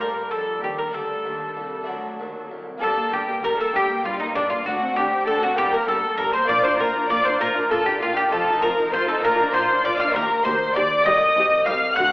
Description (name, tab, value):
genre	classical, baroque-style concerto movement with solo episodes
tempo	65 BPM (dotted quarters)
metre	6/8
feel	straight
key	G minor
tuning	A4 = 437 Hz
part	mandolin	melody	0.0-12.1 s	D4 to F#5	-22 LUFS	equal	none
part	warm studio violin section	melody	0.0-12.1 s	D4 to F#6	-26 LUFS	left 1 dB	none
part	rich studio violin section	second line	0.0-12.1 s	D4 to F#5	-25 LUFS	equal	none
part	harpsichord	accompaniment	0.0-12.1 s	C2 to A4	-32 LUFS	equal	none
part	rich chamber viola section	accompaniment	0.0-12.1 s	F#3 to G4	-29 LUFS	equal	none
part	rich symphonic cello section	bass	0.0-12.1 s	C2 to Bb2	-36 LUFS	equal	none
part	warm chamber double bass section	bass	2.8-12.1 s	F1 to Eb2	-40 LUFS	equal	none
room	wet recital hall reverb, RT60 1.4 s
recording	heard from further back in the room, telephone sound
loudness	-18 LUFS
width	side -22 dB against mid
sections	0.0-2.8 A section; 2.8-12.1 B section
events	none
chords	0.0 Gm; 0.9 Dsus4; 1.9 D; 2.8 Gm; 4.7 D5; 5.6 Gm; 6.5 Bb; 8.3 F5; 9.2 Bb; 10.1 Eb; 11.1 Am7b5/C